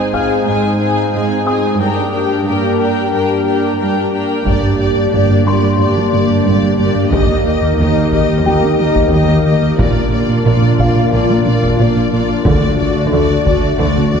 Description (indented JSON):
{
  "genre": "cinematic, hybrid orchestral and electronic film score",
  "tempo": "90 BPM",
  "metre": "4/4",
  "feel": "straight",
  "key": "G minor",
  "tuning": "A4 = 438 Hz",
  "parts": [
    { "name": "rich symphonic violin section", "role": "second line", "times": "0.0-4.5 s", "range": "Ab4 to Ab5", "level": "-20 LUFS", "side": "left 2 dB", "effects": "none" },
    { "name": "warm symphonic viola section", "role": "accompaniment", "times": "0.0-14.2 s", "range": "A3 to G4", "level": "-19 LUFS", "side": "right 1 dB", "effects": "none" },
    { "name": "hollow soft pad", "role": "sustained chords", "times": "0.0-14.2 s", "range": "Ab3 to D5", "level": "-18 LUFS", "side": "left 3 dB", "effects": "chorus" },
    { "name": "warm symphonic cello section", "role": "bass", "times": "0.0-14.2 s", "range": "Eb2 to D3", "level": "-20 LUFS", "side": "right 3 dB", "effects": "none" },
    { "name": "felt-muted upright piano", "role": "texture", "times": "0.0-14.2 s", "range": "G4 to Gb6", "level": "-24 LUFS", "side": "left 2 dB", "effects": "ping-pong delay" },
    { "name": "taiko ensemble", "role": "drums", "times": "0.1-0.4, 4.5-14.1 s", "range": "none", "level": "-21 LUFS", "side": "equal", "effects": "none" },
    { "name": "warm symphonic violin section", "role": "melody", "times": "4.5-14.2 s", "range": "D5 to Eb5", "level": "-21 LUFS", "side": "left 4 dB", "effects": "none" },
    { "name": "smooth gliding synth bass", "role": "riff", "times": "4.5-14.2 s", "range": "D2 to Bb3", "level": "-18 LUFS", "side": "right 2 dB", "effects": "none" },
    { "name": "rich studio double bass section", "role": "bass", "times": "4.5-14.2 s", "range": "G1 to Eb2", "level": "-20 LUFS", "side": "right 2 dB", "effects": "none" }
  ],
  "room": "wet concert hall reverb, RT60 2.0 s",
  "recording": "heard from further back in the room",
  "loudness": "-11 LUFS",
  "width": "side -6 dB against mid",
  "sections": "0.0-4.5 A section; 4.5-14.2 B section",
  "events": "none",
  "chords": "0.0 Ab; 1.8 Gm; 7.1 Eb; 9.8 Bb; 12.5 D"
}